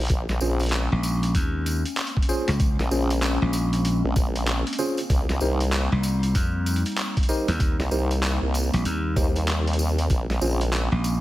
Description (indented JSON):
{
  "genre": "glitch hop",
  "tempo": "96 BPM",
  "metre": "4/4",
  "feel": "swing 62% on 16ths",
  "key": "Bb dorian",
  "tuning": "A4 = 443 Hz",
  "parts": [
    { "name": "formant-sweep wobble bass", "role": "bass", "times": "0.0-10.9 s", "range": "Bb1 to Eb2", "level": "-24 LUFS", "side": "equal", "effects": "chorus, tube saturation" },
    { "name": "boom bap sampler-style drum kit", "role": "drums", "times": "0.0-11.2 s", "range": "handclaps, hi-hat, snare drum", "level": "-30 LUFS", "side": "equal", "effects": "studio reverb" },
    { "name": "warbly tape-like pad", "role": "sustained chords", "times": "0.1-11.2 s", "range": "G3 to Eb4", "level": "-31 LUFS", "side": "left 1 dB", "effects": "chorus, built-in reverb, sidechain pumping" },
    { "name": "electronic kick drum", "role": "drums", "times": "0.1-10.3 s", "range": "none", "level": "-24 LUFS", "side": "equal", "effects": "studio reverb" },
    { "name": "tambourine", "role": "percussion", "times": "0.1-11.2 s", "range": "none", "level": "-37 LUFS", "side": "left 1 dB", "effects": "none" },
    { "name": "mellow tine electric piano", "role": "stabs", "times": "0.4-10.6 s", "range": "Db4 to C5", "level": "-30 LUFS", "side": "equal", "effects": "medium stereo tremolo, sidechain pumping, tape echo" },
    { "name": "slap bass", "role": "bass", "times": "0.9-11.2 s", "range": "Bb1 to F2", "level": "-23 LUFS", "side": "equal", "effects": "none" }
  ],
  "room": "little or no reverb",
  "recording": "vinyl crackle",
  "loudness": "-21 LUFS",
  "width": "side -16 dB against mid",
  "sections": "0.0-11.2 A section",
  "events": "none",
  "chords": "0.1 Bbm9; 5.1 Cm7; 10.1 Bbm9",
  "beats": "| 0.10 0.73 1.35 1.98 | 2.60 3.23 3.85 4.48 | 5.10 5.73 6.35 6.98 | 7.60 8.23 8.85 9.48 | 10.10 10.73"
}